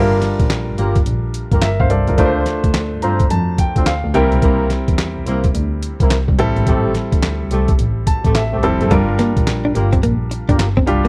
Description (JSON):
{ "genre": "R&B, new jack swing", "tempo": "107 BPM", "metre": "4/4", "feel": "swing 63% on 16ths", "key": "G dorian", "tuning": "A4 = 440 Hz", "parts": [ { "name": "clear baby grand piano", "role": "accompaniment", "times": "0.0-11.1 s", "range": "G3 to Bb5", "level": "-23 LUFS", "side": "equal", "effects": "none" }, { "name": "mellow horn section", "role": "stabs", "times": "0.0-10.7 s", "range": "A3 to C5", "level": "-25 LUFS", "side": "equal", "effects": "none" }, { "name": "clear double bass", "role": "bass", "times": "0.0-11.1 s", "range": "F1 to G2", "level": "-21 LUFS", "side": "equal", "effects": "none" }, { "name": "boom bap sampler-style drum kit", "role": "drums", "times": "0.2-11.1 s", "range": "handclaps, hi-hat, kick drum, snare drum", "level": "-20 LUFS", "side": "equal", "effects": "none" }, { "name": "direct-recorded clean electric guitar", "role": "riff", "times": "8.9-11.1 s", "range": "G3 to D4", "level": "-21 LUFS", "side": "equal", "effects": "lush chorus" } ], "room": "small room ambience", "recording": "dry, close 1970s-style studio recording", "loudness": "-16 LUFS", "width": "mono", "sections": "0.0-11.1 A section", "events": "grand piano fill 2.7-4.4, 7.8-8.9", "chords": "0.0 Gm7; 2.2 Dm7; 4.1 C7; 6.4 Am7; 8.9 Gm7", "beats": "0.50 1.06 1.62 | 2.18 2.74 3.30 3.86 | 4.42 4.98 5.54 6.11 | 6.67 7.23 7.79 8.35 | 8.91 9.47 10.03 10.59" }